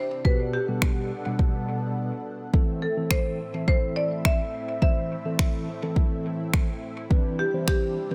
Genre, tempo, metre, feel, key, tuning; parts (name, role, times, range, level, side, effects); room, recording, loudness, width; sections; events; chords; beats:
dance-pop; 105 BPM; 4/4; straight; A dorian; A4 = 439 Hz
marimba with hard mallets; melody; 0.0-8.1 s; G4 to E5; -32 LUFS; equal; dub echo
soft supersaw; sustained chords; 0.0-8.1 s; A2 to F#5; -38 LUFS; equal; sidechain pumping
mellow tine electric piano; accompaniment; 0.2-8.1 s; B2 to F#5; -33 LUFS; equal; sidechain pumping, dub echo
deep house drum kit; drums; 0.2-7.8 s; finger snaps, kick drum; -25 LUFS; equal
little or no reverb; echo-heavy mix; -26 LUFS; mono
0.0-8.1 A section
break 2.0-2.5
0.2 Gmaj7/B; 2.5 Am; 7.1 Cmaj7
| 0.25 0.82 1.39 1.96 | 2.54 3.11 3.68 4.25 | 4.82 5.39 5.96 6.54 | 7.11 7.68